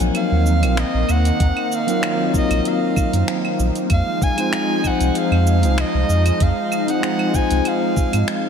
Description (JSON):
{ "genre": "sunset chillout", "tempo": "96 BPM", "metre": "4/4", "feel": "straight", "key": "Eb dorian", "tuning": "A4 = 438 Hz", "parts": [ { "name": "tine electric piano", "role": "accompaniment", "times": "0.0-8.5 s", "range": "F3 to Eb5", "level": "-23 LUFS", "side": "moving between left 7 dB and right 5 dB", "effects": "medium tremolo, auto-pan, vintage 12-bit sampler grit, ping-pong delay" }, { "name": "lush unison pad", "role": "sustained chords", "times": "0.0-8.5 s", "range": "Eb3 to Eb4", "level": "-23 LUFS", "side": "left 1 dB", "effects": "chorus" }, { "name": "warm sub bass", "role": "bass", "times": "0.0-8.2 s", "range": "Bb1 to Ab2", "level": "-18 LUFS", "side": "equal", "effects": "none" }, { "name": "smooth R&B drum kit", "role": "drums", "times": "0.0-8.4 s", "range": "cabasa, claves, finger snaps, hi-hat", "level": "-28 LUFS", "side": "right 2 dB", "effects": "none" }, { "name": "breathy soprano saxophone", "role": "melody", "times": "0.2-8.5 s", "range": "Eb5 to Ab5", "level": "-24 LUFS", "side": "right 1 dB", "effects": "ping-pong delay" }, { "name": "electronic kick drum", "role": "drums", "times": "1.4-8.1 s", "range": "none", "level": "-20 LUFS", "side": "equal", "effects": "none" } ], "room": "moderate plate reverb, RT60 3.0 s", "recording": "dreamy mix soaked in reverb", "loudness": "-16 LUFS", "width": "side -7 dB against mid", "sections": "0.0-8.5 A section", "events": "none", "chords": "0.0 Ebm69; 3.9 Fm7", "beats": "0.15 0.78 | 1.40 2.03 2.65 3.28 | 3.90 4.53 5.15 5.78 | 6.40 7.03 7.65 8.28" }